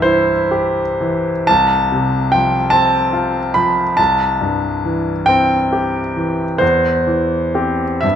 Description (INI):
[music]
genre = classical, romantic nocturne for solo piano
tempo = 39-51 BPM (dotted quarters)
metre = 12/8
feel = rubato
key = C major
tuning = A4 = 440 Hz
[part]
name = clear grand piano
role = solo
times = 0.0-8.2 s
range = C2 to B5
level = -14 LUFS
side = equal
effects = none
[sound]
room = moderate recital hall reverb, RT60 1.7 s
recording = none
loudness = -14 LUFS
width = side -9 dB against mid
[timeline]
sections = 0.0-8.2 A section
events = none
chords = 0.0 C; 1.5 F/C; 4.0 C; 6.6 C/E